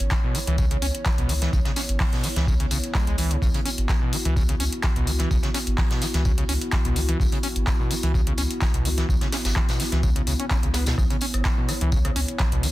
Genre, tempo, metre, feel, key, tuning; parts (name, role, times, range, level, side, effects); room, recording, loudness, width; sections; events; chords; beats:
acid house; 127 BPM; 4/4; swing 53% on 16ths; C# minor; A4 = 440 Hz
dark analog pad; sustained chords; 0.0-12.7 s; B3 to C#5; -32 LUFS; left 1 dB; chorus, sidechain pumping
round analog bass; bass; 0.0-12.7 s; G#1 to C#2; -25 LUFS; equal; sidechain pumping
booming analog drum machine; drums; 0.0-12.7 s; handclaps, hi-hat, rim click; -30 LUFS; equal
overdriven acid bass; riff; 0.1-12.7 s; B2 to C#4; -30 LUFS; equal; distortion, tube saturation, wide subtle chorus, vintage 12-bit sampler grit, digital delay
electronic kick drum; drums; 0.1-12.5 s; -24 LUFS; equal
vintage brush drum kit; drums; 0.1-12.7 s; hi-hat, snare drum, tambourine; -34 LUFS; equal; sidechain pumping on hats, high-pass filter on hats, soft clipping on snare, high-pass filter on snare, sidechain pumping on perc, high-pass filter on perc, high-pass filter on room
little or no reverb; dense, heavily limited modern master; -20 LUFS; side -16 dB against mid
0.0-12.7 A section
0.0 C#m7
0.11 0.58 1.06 | 1.53 2.00 2.47 2.95 | 3.42 3.89 4.36 4.84 | 5.31 5.78 6.25 6.73 | 7.20 7.67 8.14 8.62 | 9.09 9.56 10.03 10.51 | 10.98 11.45 11.92 12.39